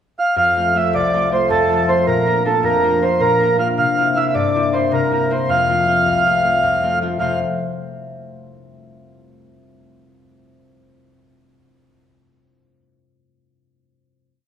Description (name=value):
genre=celtic folk, Celtic slip jig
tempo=105 BPM (dotted quarters)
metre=9/8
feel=straight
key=F major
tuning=A4 = 442 Hz
part: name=mellow accordion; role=melody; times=0.2-7.4 s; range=A4 to F5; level=-16 LUFS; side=right 2 dB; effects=none
part: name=concert harp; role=accompaniment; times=0.4-7.4 s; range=C2 to C5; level=-20 LUFS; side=left 3 dB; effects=none
room=wet recital hall reverb, RT60 1.5 s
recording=recorded in a church or concert hall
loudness=-14 LUFS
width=side -9 dB against mid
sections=0.0-0.4 pickup bar; 0.4-7.2 A section; 7.2-8.9 final chord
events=none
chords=0.4 F; 2.1 Bb; 3.8 C7; 5.5 F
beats=| 0.36 0.93 1.50 | 2.07 2.64 3.21 | 3.78 4.35 4.92 | 5.49 6.06 6.63 | 7.21